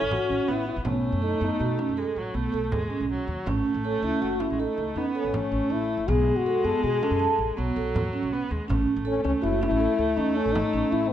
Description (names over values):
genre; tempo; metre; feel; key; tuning
contemporary instrumental, chamber music in an uneven meter; 161 BPM; 7/4; straight; B mixolydian; A4 = 441 Hz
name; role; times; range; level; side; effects
warm viola; second line; 0.0-11.1 s; F#3 to C#4; -31 LUFS; equal; none
vibraphone with soft mallets; arpeggios; 0.0-11.0 s; B3 to A5; -28 LUFS; right 5 dB; none
upright bass; bass; 0.0-11.1 s; F#1 to B2; -30 LUFS; equal; none
warm French horn; melody; 0.1-11.1 s; B3 to A4; -27 LUFS; left 6 dB; none
frame drum; percussion; 0.1-10.7 s; none; -34 LUFS; right 1 dB; none
room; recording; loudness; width
moderate recital hall reverb, RT60 1.4 s; nothing above 10.8 kHz; -23 LUFS; side -10 dB against mid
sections
0.0-11.1 A section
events
none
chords
0.0 A; 0.9 B7; 3.5 A; 6.1 B7(no3); 8.7 A